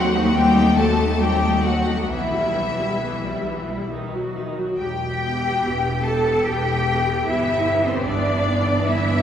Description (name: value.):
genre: classical, slow romantic movement for string orchestra.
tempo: 65-76 BPM.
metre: 3/4.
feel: rubato.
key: E minor.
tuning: A4 = 440 Hz.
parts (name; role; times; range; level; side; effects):
clear studio violin section; melody; 0.0-9.2 s; C5 to A5; -26 LUFS; left 4 dB; none.
clear symphonic violin section; second line; 0.0-9.2 s; E4 to A5; -27 LUFS; left 2 dB; none.
clear symphonic viola section; accompaniment; 0.0-9.2 s; D#3 to F#4; -25 LUFS; equal; none.
clear symphonic double bass section; bass; 0.0-9.2 s; E1 to D#2; -24 LUFS; left 1 dB; none.
rich symphonic cello section; bass; 0.0-9.2 s; E3 to A4; -24 LUFS; right 2 dB; none.
room: wet cathedral reverb, RT60 5.1 s.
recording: recorded in a church or concert hall, small room ambience.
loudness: -18 LUFS.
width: side -9 dB against mid.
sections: 0.0-4.8 A section; 4.8-9.2 B section.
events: none.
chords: 0.0 D#dim7; 2.1 Em/B; 3.9 B; 4.8 Em; 7.3 Em/G.